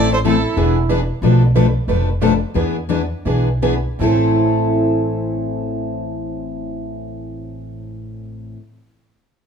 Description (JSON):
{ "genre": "acoustic string swing (jazz manouche)", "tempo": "156-184 BPM", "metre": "4/4", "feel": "swing 60% on 8ths", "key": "A minor", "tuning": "A4 = 440 Hz", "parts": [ { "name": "rich violin", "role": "melody", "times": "0.0-0.6 s", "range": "A4 to D5", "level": "-21 LUFS", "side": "right 3 dB", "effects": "none" }, { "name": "mellow trumpet", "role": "second line", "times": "0.0-1.1 s", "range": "E4 to A4", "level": "-23 LUFS", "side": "right 7 dB", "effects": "slapback echo" }, { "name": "picked plugged-in steel-string acoustic guitar", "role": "accompaniment", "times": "0.0-8.6 s", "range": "A2 to B4", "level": "-22 LUFS", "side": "right 5 dB", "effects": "none" }, { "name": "picked steel-string acoustic guitar", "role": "accompaniment", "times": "0.0-8.6 s", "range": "A2 to A4", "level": "-20 LUFS", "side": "left 7 dB", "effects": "none" }, { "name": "upright bass", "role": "bass", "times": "0.0-8.5 s", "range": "E1 to E2", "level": "-20 LUFS", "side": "equal", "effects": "none" } ], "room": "moderate large studio reverb, RT60 1.1 s", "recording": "band playing live in one room", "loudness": "-15 LUFS", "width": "side -7 dB against mid", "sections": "0.0-1.2 A section; 1.2-4.0 B section; 4.0-7.1 C section", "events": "slowing down 1.2-4.0", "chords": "0.0 Am; 0.6 E7; 1.2 Bm7b5; 2.5 E7; 4.0 Am" }